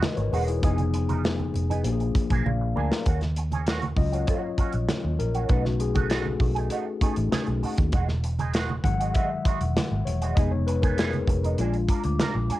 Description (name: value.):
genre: lush 1970s-style soul.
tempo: 98 BPM.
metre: 4/4.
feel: straight.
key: Eb minor.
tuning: A4 = 436 Hz.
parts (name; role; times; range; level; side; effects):
tine electric piano; accompaniment; 0.0-12.6 s; D#3 to Bb5; -29 LUFS; left 5 dB; fast stereo tremolo.
electric guitar with an envelope filter; riff; 0.0-12.6 s; G#3 to Bb4; -33 LUFS; right 7 dB; wah, ensemble chorus.
modern studio drum kit; drums; 0.0-12.6 s; hi-hat, kick drum, snare drum; -26 LUFS; equal; none.
congas; percussion; 0.0-12.6 s; none; -34 LUFS; right 5 dB; none.
vintage muted fingered electric bass; bass; 0.2-12.5 s; E1 to Eb2; -26 LUFS; equal; none.
celesta; texture; 11.9-12.6 s; Bb5 to F6; -38 LUFS; left 3 dB; plate reverb.
room: moderate studio reverb, RT60 0.6 s.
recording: home recording on cassette.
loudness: -22 LUFS.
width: side -16 dB against mid.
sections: 0.0-3.1 A section; 3.1-12.6 B section.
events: tine electric piano fill 2.1-3.1; drum fill 2.5-3.1; tine electric piano solo 3.1-12.6.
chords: 0.0 Emaj9; 0.6 Fm7b5; 1.8 Bb7; 3.1 Ebm7; 5.5 B7; 7.9 Emaj9; 10.4 Fm7b5; 11.6 Bb7.